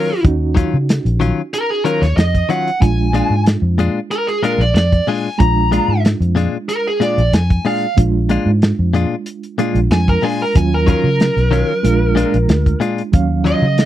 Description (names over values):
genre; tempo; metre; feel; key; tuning
straight-eighth soul blues; 93 BPM; 4/4; straight; Eb minor; A4 = 440 Hz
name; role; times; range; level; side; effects
biting lead guitar; melody; 0.0-13.9 s; Ab4 to Bb5; -18 LUFS; right 1 dB; overdrive
bright reed electric piano; accompaniment; 0.0-13.9 s; F3 to F5; -22 LUFS; right 7 dB; fast tremolo
direct-recorded clean electric guitar; stabs; 0.0-13.7 s; Bb2 to F4; -18 LUFS; left 6 dB; none
vintage muted fingered electric bass; bass; 0.2-13.9 s; Bb1 to Db3; -16 LUFS; equal; none
warm soul drum kit; drums; 0.2-13.9 s; hi-hat, kick drum, snare drum; -14 LUFS; equal; none
room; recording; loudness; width
little or no reverb; dry, close 1970s-style studio recording; -13 LUFS; side -13 dB against mid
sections
0.0-13.1 A section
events
none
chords
0.0 Ebm9; 2.8 Bb7; 10.6 Ebm9; 11.8 Bb7; 13.1 Ebm9